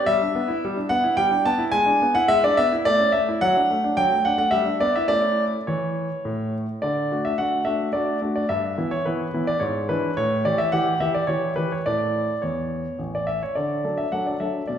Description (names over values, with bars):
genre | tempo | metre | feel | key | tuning
classical-period piano sonatina | 107 BPM | 3/4 | straight | D major | A4 = 440 Hz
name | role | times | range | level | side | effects
warm concert grand piano | solo | 0.0-14.8 s | A1 to A5 | -20 LUFS | equal | none
room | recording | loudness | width
wet recital hall reverb, RT60 1.5 s | heard from further back in the room | -20 LUFS | side -8 dB against mid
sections
0.0-6.8 A section; 6.8-14.8 B section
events
none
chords
0.1 Em7/G; 1.7 E7/G#; 2.9 A; 3.4 D/F#; 4.5 Em7/G; 5.1 A; 6.8 D; 8.5 Em/G; 9.6 E7/G#; 10.2 A5; 11.8 A; 13.6 D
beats
| 0.07 0.62 1.18 | 1.73 2.29 2.85 | 3.41 3.97 4.53 | 5.10 5.67 6.25 | 6.82 7.39 7.95 | 8.51 9.06 9.62 | 10.17 10.72 11.28 | 11.84 12.41 12.98 | 13.55 14.11 14.68